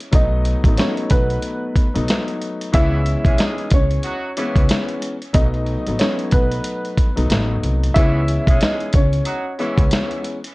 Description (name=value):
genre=hip hop, boom-bap hip-hop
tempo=92 BPM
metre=4/4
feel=swing 61% on 16ths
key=C# minor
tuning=A4 = 440 Hz
part: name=warm upright piano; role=melody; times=0.0-10.5 s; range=B3 to E5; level=-25 LUFS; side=equal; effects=high-pass filter, low-pass filter, tape echo
part: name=dusty soul sampler-style drum kit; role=drums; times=0.0-10.5 s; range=hi-hat, kick drum, snare drum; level=-17 LUFS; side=equal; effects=vintage 12-bit sampler grit
part: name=dark baby grand piano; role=accompaniment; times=0.1-10.4 s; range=E3 to D#4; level=-25 LUFS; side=left 2 dB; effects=cassette tape, high-pass filter, low-pass filter
part: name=upright bass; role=bass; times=0.1-9.9 s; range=A1 to C#2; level=-20 LUFS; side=equal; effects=transformer saturation
part: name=clear horn section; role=stabs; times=2.7-9.8 s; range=C#3 to G#4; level=-30 LUFS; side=right 2 dB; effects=high-pass filter, low-pass filter, tape echo
room=light reverb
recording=worn, warbling old tape, cassette tape, warbly pitch drift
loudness=-16 LUFS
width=side -22 dB against mid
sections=0.0-10.5 A section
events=none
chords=0.1 B7; 2.7 C#m7; 5.3 B7; 8.0 C#m7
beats=| 0.13 0.78 1.44 2.09 | 2.74 3.39 4.04 4.70 | 5.35 6.00 6.65 7.30 | 7.96 8.61 9.26 9.91